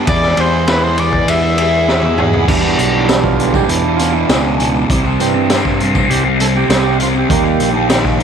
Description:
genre	psychedelic rock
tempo	100 BPM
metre	4/4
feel	straight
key	unclear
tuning	A4 = 440 Hz
part	percussive tonewheel organ	sustained chords	0.0-8.0 s	D3 to B5	-19 LUFS	right 10 dB	overdrive, lush chorus
part	fuzz guitar	riff	0.0-8.2 s	E2 to G#4	-16 LUFS	left 1 dB	distortion, phaser
part	overdriven synth lead	melody	0.1-2.2 s	B4 to E5	-17 LUFS	left 2 dB	distortion, slapback echo
part	fuzz fingered electric bass	bass	0.1-8.2 s	Bb1 to G2	-19 LUFS	equal	overdrive
part	raw garage drum kit	drums	0.1-8.2 s	crash cymbal, hi-hat, kick drum, ride cymbal, snare drum, toms	-17 LUFS	equal	none
part	tambourine	percussion	2.6-8.2 s	none	-32 LUFS	left 16 dB	none
room	light reverb, small room ambience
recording	1960s-style stereo with parts hard left and right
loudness	-11 LUFS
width	side -7 dB against mid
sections	0.0-2.5 A section; 2.5-8.2 B section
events	drum fill 1.9-2.5; tonewheel organ solo 2.5-8.2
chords	0.1 E; 2.5 Em7; 4.9 C; 7.3 Eb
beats	| 0.08 0.68 1.29 1.89 | 2.49 3.09 3.69 4.30 | 4.90 5.50 6.10 6.70 | 7.30 7.90

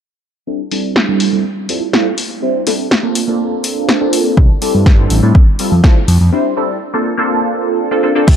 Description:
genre	filtered disco house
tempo	123 BPM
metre	4/4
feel	straight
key	C mixolydian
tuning	A4 = 439 Hz
part	funky polysynth comp	accompaniment	0.5-8.4 s	G3 to C5	-15 LUFS	right 1 dB	chorus, phaser, sidechain pumping, low-pass filter
part	punchy analog drum machine	drums	0.7-8.4 s	crash cymbal, hi-hat, snare drum	-18 LUFS	left 1 dB	overdrive, sidechain pumping on hats, low-pass filter on hats, low-pass filter on snare, sidechain pumping on cymbals, low-pass filter on cymbals
part	fat analog bass	bass	4.4-8.4 s	A1 to A2	-11 LUFS	equal	sidechain pumping, low-pass filter
part	electronic kick drum	drums	4.4-8.4 s	none	-8 LUFS	equal	overdrive
room	light reverb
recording	dark, warm production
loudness	-11 LUFS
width	side -8 dB against mid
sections	0.5-8.3 A section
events	filter sweep 0.5-8.3; break 6.3-8.3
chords	0.5 C6; 1.4 Fmaj9; 2.4 C6; 3.2 Bbmaj7; 4.4 C6; 5.4 Fmaj9; 6.3 C6; 7.1 Bbmaj7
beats	| 0.47 0.96 1.45 1.94 | 2.42 2.91 3.40 3.89 | 4.38 4.86 5.35 5.84 | 6.33 6.82 7.30 7.79 | 8.28

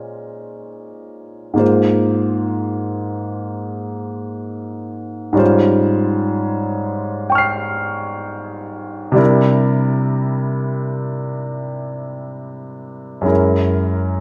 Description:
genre	classical, impressionist solo piano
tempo	51-64 BPM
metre	4/4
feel	rubato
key	unclear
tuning	A4 = 440 Hz
part	clear grand piano	solo	0.0-14.2 s	F#2 to C7	-20 LUFS	equal	none
room	moderate scoring stage reverb, RT60 2.0 s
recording	none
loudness	-18 LUFS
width	mono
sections	0.0-14.2 A section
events	none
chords	0.0 Bbm11; 1.6 Ab69; 5.4 Dbmaj7#11/Ab; 9.2 C9; 13.3 F#9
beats	0.64 | 1.61 2.57 3.52 4.46 | 5.40 6.35 7.29 8.24 | 9.20 10.17 11.17 12.19 | 13.29

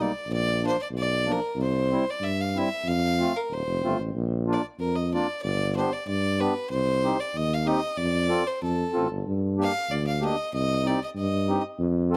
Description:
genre	alpine folk, alpine dance band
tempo	94 BPM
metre	2/4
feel	straight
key	unclear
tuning	A4 = 440 Hz
part	bright fiddle	melody	0.0-12.2 s	A4 to F5	-31 LUFS	equal	none
part	mellow accordion	accompaniment	0.0-12.2 s	F3 to A4	-30 LUFS	equal	none
part	warm tuba	bass	0.0-12.2 s	Eb1 to G2	-29 LUFS	equal	none
room	studio reverb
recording	dry, close 1970s-style studio recording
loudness	-26 LUFS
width	mono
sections	0.0-12.2 A section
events	none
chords	0.3 Bb; 1.6 C; 2.8 F; 4.1 Bb; 5.4 G; 6.7 Cm; 8.0 F; 9.3 Gm; 10.5 Cm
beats	| 0.29 0.93 | 1.56 2.20 | 2.85 3.50 | 4.14 4.79 | 5.43 6.07 | 6.70 7.34 | 7.97 8.61 | 9.25 9.89 | 10.53 11.17 | 11.80

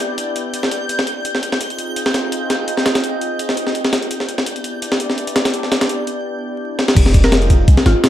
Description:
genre	drum and bass, jungle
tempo	168 BPM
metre	4/4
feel	swing 54% on 16ths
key	unclear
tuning	A4 = 440 Hz
part	warbly tape-like pad	sustained chords	0.0-8.1 s	B3 to Eb5	-24 LUFS	equal	chorus, built-in reverb
part	breakbeat sampler-style drum kit	drums	0.0-8.1 s	crash cymbal, hi-hat, kick drum, snare drum	-16 LUFS	equal	high-pass filter on hats, high-pass filter on snare, high-pass filter on cymbals, high-pass filter on kick, high-pass filter on room
part	backwards swelling texture	texture	0.0-6.2 s	G6	-28 LUFS	right 1 dB	built-in reverb
part	warm 808-style bass	bass	7.0-7.9 s	F1 to C2	-14 LUFS	equal	none
part	mallet-like synth pluck	melody	7.2-8.1 s	F4 to Bb4	-20 LUFS	left 1 dB	chorus, dub echo
room	light reverb, digital ambience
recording	vinyl crackle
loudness	-15 LUFS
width	side -12 dB against mid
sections	0.0-7.0 A section; 7.0-8.1 B section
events	drum fill 6.8; drop 7.0-8.1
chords	0.0 Em7; 1.3 Fm7; 4.1 Em7; 7.0 Fm7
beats	0.18 0.54 0.89 | 1.25 1.61 1.97 2.32 | 2.68 3.04 3.39 3.75 | 4.11 4.46 4.82 5.18 | 5.54 5.89 6.25 6.61 | 6.96 7.32 7.68 8.04

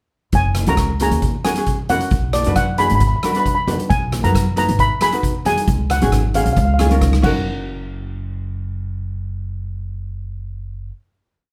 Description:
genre	calypso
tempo	135 BPM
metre	4/4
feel	straight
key	F# major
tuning	A4 = 440 Hz
part	upright bass	bass	0.3-10.9 s	F#1 to F#2	-22 LUFS	equal	none
part	street-band drum kit	drums	0.3-7.3 s	crash cymbal, hi-hat, kick drum, rim click	-24 LUFS	equal	none
part	steel pan	melody	0.4-10.9 s	D5 to B5	-23 LUFS	equal	none
part	congas	percussion	0.6-7.6 s	none	-27 LUFS	equal	none
part	ukulele	accompaniment	0.7-10.9 s	C#4 to B4	-26 LUFS	equal	none
room	light reverb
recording	none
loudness	-18 LUFS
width	mono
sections	0.3-7.5 verse; 7.5-11.0 final hit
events	drum fill 6.9-7.5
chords	0.3 F#; 2.1 Bm; 3.9 B; 5.7 C#sus4; 6.6 C#; 7.2 F#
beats	| 0.34 0.78 1.23 1.68 | 2.12 2.57 3.01 3.46 | 3.90 4.35 4.79 5.24 | 5.68 6.12 6.57 7.01 | 7.46 7.91 8.35 8.80 | 9.24 9.69 10.14 10.58

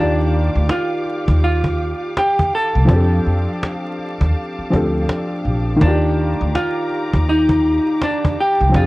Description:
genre	lo-fi hip hop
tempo	82 BPM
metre	4/4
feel	swing 62% on 16ths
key	unclear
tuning	A4 = 442 Hz
part	vintage hollow-body jazz guitar	melody	0.0-8.9 s	D4 to A4	-19 LUFS	equal	low-pass filter, plate reverb
part	warm upright piano	accompaniment	0.0-8.9 s	Eb3 to D5	-22 LUFS	left 1 dB	cassette tape, low-pass filter
part	muted studio string section	sustained chords	0.0-8.9 s	G4 to D6	-30 LUFS	left 1 dB	low-pass filter, plate reverb
part	upright bass	bass	0.0-8.9 s	Bb1 to F2	-17 LUFS	equal	none
part	cajon	drums	0.3-8.9 s	none	-20 LUFS	equal	vintage 12-bit sampler grit
room	moderate studio reverb, RT60 0.5 s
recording	worn, warbling old tape, cassette tape, vinyl crackle, warbly pitch drift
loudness	-15 LUFS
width	side -20 dB against mid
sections	0.0-8.9 A section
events	none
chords	0.0 Ebmaj9; 2.9 F69; 5.8 Ebmaj9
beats	0.69 1.42 2.15 | 2.89 3.62 4.35 5.08 | 5.81 6.54 7.28 8.01 | 8.74

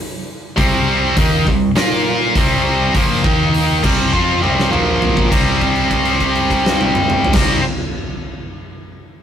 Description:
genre	hard rock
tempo	101 BPM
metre	4/4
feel	straight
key	unclear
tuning	A4 = 444 Hz
part	tight distorted guitar	riff	0.6-7.6 s	Bb2 to Bb4	-15 LUFS	equal	distortion
part	fingered electric bass	bass	0.6-7.6 s	Bb1 to Bb2	-22 LUFS	equal	none
part	huge arena drum kit	drums	0.6-7.5 s	crash cymbal, hi-hat, kick drum, snare drum, toms	-18 LUFS	equal	none
room	light reverb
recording	rough rehearsal-room recording, warm saturation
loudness	-13 LUFS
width	side -9 dB against mid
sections	0.0-5.3 A section; 5.3-7.7 B section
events	drum fill 4.1-5.3; held note 5.3-7.3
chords	0.0 C5; 1.8 Bb5; 2.4 C5; 3.2 Eb5; 3.8 C5; 4.7 Bb5; 5.3 C5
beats	| 0.57 1.17 1.76 2.35 | 2.95 3.54 4.13 4.73 | 5.32 5.91 6.51 7.10

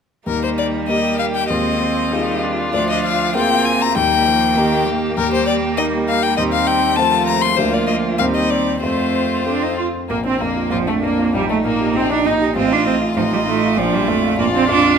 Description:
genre	quick classical-period movement for piano quintet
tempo	98 BPM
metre	2/4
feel	straight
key	Eb major, Bb major from 5.2 s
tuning	A4 = 440 Hz
part	clear violin	melody	0.3-15.0 s	G3 to C6	-20 LUFS	left 8 dB	none
part	clear cello	second line	0.3-15.0 s	Eb3 to F4	-21 LUFS	right 8 dB	none
part	rich violin	second line	0.3-15.0 s	D4 to G4	-24 LUFS	left 4 dB	none
part	warm grand piano	accompaniment	0.3-15.0 s	A1 to C5	-21 LUFS	left 1 dB	none
part	warm viola	accompaniment	0.3-15.0 s	F3 to F4	-24 LUFS	right 6 dB	none
room	moderate recital hall reverb, RT60 1.6 s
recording	close, detailed microphones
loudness	-15 LUFS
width	side -7 dB against mid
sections	0.3-10.1 A section; 10.1-15.0 B section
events	none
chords	0.3 Eb; 1.5 Fm7/Eb; 2.7 Bb7/D; 4.0 Eb; 6.4 F7/Eb; 7.6 Bb/D; 8.2 Cm/Eb; 8.8 F; 10.1 Bb; 11.3 Cm13/Bb; 12.6 F7/A; 13.8 Bb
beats	| 0.27 0.89 | 1.50 2.12 | 2.74 3.35 | 3.96 4.57 | 5.17 5.78 | 6.38 6.98 | 7.58 8.20 | 8.84 9.46 | 10.10 10.73 | 11.35 11.96 | 12.57 13.17 | 13.78 14.39

